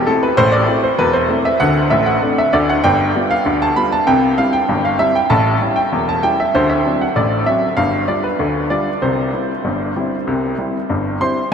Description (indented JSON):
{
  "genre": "ragtime piano",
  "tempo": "97 BPM",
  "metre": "2/4",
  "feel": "straight",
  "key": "C major",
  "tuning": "A4 = 441 Hz",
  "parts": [
    { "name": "bright baby grand piano", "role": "solo", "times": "0.0-11.5 s", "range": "E1 to C6", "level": "-14 LUFS", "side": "equal", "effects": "none" }
  ],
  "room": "wet huge ambient reverb, RT60 7.6 s",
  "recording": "in a vast, echoing space",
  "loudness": "-14 LUFS",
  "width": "side -7 dB against mid",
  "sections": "0.0-11.5 A section",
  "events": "none",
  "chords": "0.0 Am; 1.6 D5; 2.8 G7; 4.1 C; 5.3 A7; 6.5 D7; 7.8 G5; 9.0 C",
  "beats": "| 0.38 0.99 | 1.61 2.22 | 2.84 3.46 | 4.07 4.69 | 5.31 5.92 | 6.54 7.16 | 7.78 8.39 | 9.02 9.65 | 10.27 10.89"
}